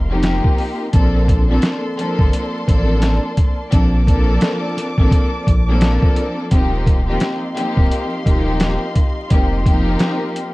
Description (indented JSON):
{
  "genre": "hip hop, boom-bap hip-hop",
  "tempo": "86 BPM",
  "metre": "4/4",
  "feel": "swing 60% on 16ths",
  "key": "Bb major",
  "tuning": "A4 = 438 Hz",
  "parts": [
    { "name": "warm studio string section", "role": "sustained chords", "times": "0.0-10.5 s", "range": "Bb3 to D6", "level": "-29 LUFS", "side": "equal", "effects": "high-pass filter, low-pass filter" },
    { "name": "saturated sub bass", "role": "bass", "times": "0.0-10.0 s", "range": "D1 to Bb1", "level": "-18 LUFS", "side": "equal", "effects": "none" },
    { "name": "warm studio string section", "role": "accompaniment", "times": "0.1-10.5 s", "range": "F3 to A4", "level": "-20 LUFS", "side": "left 1 dB", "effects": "high-pass filter, low-pass filter" },
    { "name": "boom bap sampler-style drum kit", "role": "drums", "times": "0.2-10.5 s", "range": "hi-hat, kick drum, snare drum", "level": "-16 LUFS", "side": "equal", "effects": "vintage 12-bit sampler grit" }
  ],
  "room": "small room ambience",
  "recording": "dark, warm production, vinyl crackle",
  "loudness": "-14 LUFS",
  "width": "side -20 dB against mid",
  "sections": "0.0-10.5 A section",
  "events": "none",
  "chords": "0.0 F7sus4; 0.9 Bbmaj9; 6.5 Eb69; 9.3 F7sus4",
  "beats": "0.24 | 0.93 1.63 2.33 3.03 | 3.73 4.42 5.12 5.82 | 6.52 7.21 7.91 8.61 | 9.31 10.00"
}